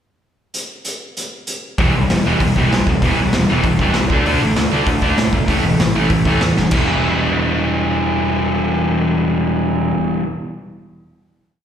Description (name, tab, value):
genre	punk rock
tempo	194 BPM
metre	4/4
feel	straight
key	E minor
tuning	A4 = 437 Hz
part	raw garage drum kit	drums	0.5-6.8 s	crash cymbal, hi-hat, kick drum, snare drum	-20 LUFS	equal	none
part	overdriven electric guitar	riff	1.8-10.3 s	E2 to D4	-21 LUFS	right 11 dB	slapback echo
part	sludgy distorted guitar	riff	1.8-10.3 s	A2 to E4	-18 LUFS	left 5 dB	overdrive, slapback echo
part	fuzz picked electric bass	bass	1.8-9.9 s	E1 to A2	-20 LUFS	equal	overdrive
room	small room ambience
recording	live gig heard through the venue's PA, recital hall reverb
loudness	-14 LUFS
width	side -9 dB against mid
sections	0.5-1.8 pickup bar; 1.8-6.7 verse; 6.7-9.2 final chord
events	drum fill 6.6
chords	0.5 N.C.; 1.8 Em; 4.1 D5; 5.5 A5; 6.7 Em